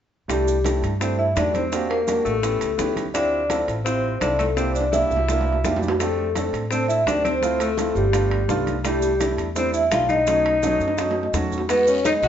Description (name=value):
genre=Afro-Cuban jazz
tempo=168 BPM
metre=4/4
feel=straight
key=C major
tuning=A4 = 440 Hz
part: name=vibraphone with soft mallets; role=melody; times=0.3-12.3 s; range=G4 to F#5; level=-22 LUFS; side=left 1 dB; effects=none
part: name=breathy alto saxophone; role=second line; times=0.3-12.3 s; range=G3 to F#4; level=-28 LUFS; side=left 4 dB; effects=none
part: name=warm upright piano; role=accompaniment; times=0.3-12.3 s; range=F#3 to Bb4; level=-27 LUFS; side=right 4 dB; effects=none
part: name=upright bass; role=bass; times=0.3-12.3 s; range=G1 to A2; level=-27 LUFS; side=equal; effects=none
part: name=bongos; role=percussion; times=0.3-12.3 s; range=none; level=-33 LUFS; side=left 5 dB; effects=none
part: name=congas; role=percussion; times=0.3-12.3 s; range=none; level=-33 LUFS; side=left 1 dB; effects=none
part: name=maracas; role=percussion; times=0.3-12.3 s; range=none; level=-37 LUFS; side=right 7 dB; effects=none
part: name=timbales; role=percussion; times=0.3-12.3 s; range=none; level=-32 LUFS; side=right 4 dB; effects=none
part: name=guiro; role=percussion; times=11.7-12.3 s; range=none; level=-36 LUFS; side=left 6 dB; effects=none
room=moderate large studio reverb, RT60 1.0 s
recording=band playing live in one room, nothing above 7.8 kHz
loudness=-19 LUFS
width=side -9 dB against mid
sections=0.3-11.7 A section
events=drum fill 4.6-6.0, 10.6-11.7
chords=0.3 C6; 1.7 Em7b5; 2.4 A7; 3.1 Dm11; 4.6 C7; 6.0 F6; 7.4 Dm7; 8.1 G7; 8.8 C6; 10.3 B7; 11.7 Emaj7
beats=| 0.30 0.65 1.01 1.37 | 1.72 2.08 2.44 2.79 | 3.15 3.50 3.86 4.22 | 4.57 4.93 5.29 5.64 | 6.00 6.36 6.71 7.07 | 7.42 7.78 8.14 8.49 | 8.85 9.21 9.56 9.92 | 10.28 10.63 10.99 11.34 | 11.70 12.05